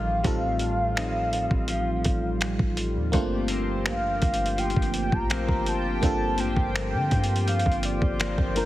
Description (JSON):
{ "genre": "contemporary R&B", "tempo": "83 BPM", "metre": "4/4", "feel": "straight", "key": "G minor", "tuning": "A4 = 438 Hz", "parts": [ { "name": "mellow horn-like synth lead", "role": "melody", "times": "0.0-8.6 s", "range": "D5 to Bb5", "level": "-29 LUFS", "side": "equal", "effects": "chorus, digital delay" }, { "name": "FM electric piano", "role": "accompaniment", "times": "0.0-8.7 s", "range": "G3 to Bb4", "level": "-31 LUFS", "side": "equal", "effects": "chorus, phaser" }, { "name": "chorused pulse-width pad", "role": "sustained chords", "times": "0.0-8.7 s", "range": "Eb3 to G5", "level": "-34 LUFS", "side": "left 2 dB", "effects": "none" }, { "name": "direct-recorded clean electric guitar", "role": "arpeggios", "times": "0.0-8.7 s", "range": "G2 to Eb4", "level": "-32 LUFS", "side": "left 1 dB", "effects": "analog chorus" }, { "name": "warm 808-style bass", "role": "bass", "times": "0.0-8.7 s", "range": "G1 to D3", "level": "-29 LUFS", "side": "equal", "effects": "none" }, { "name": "dusty soul sampler-style drum kit", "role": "drums", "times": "0.2-8.7 s", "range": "finger snaps, hi-hat, kick drum", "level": "-27 LUFS", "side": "equal", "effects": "overdrive" } ], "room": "digital ambience", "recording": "heavily compressed radio sound, multiband compression", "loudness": "-23 LUFS", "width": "side -15 dB against mid", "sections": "0.0-3.1 A section; 3.1-8.7 B section", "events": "none", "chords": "0.0 F7/A; 3.1 Gm11", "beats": "| 0.24 0.97 1.69 2.41 | 3.14 3.86 4.58 5.30 | 6.03 6.75 7.47 8.20" }